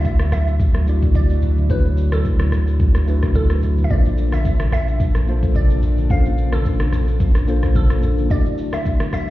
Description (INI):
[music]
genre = amapiano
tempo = 109 BPM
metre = 4/4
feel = swing 55% on 16ths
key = D major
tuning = A4 = 443 Hz
[part]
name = glassy wavetable pluck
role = melody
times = 0.0-9.3 s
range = A4 to F5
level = -30 LUFS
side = right 1 dB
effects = chorus, ping-pong delay
[part]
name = mellow tine electric piano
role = accompaniment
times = 0.0-9.3 s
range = A3 to D5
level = -26 LUFS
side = left 2 dB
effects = medium stereo tremolo
[part]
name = airy breathy pad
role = sustained chords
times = 0.0-9.3 s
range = D2 to A4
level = -28 LUFS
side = equal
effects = chorus, sidechain pumping
[part]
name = warm sub bass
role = bass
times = 0.0-8.3 s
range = Bb1 to D2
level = -18 LUFS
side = equal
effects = none
[part]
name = deep house drum kit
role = drums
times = 0.0-9.3 s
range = kick drum, rim click, shaker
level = -19 LUFS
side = equal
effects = none
[part]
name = congas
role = percussion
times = 0.2-9.3 s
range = none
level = -27 LUFS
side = left 1 dB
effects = none
[sound]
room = digital ambience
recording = heard muffled through a wall, stone room reverb, EQ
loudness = -15 LUFS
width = side -16 dB against mid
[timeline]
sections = 0.0-9.3 A section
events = none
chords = 0.0 Dmaj9; 3.9 Bbmaj9; 8.3 Dadd9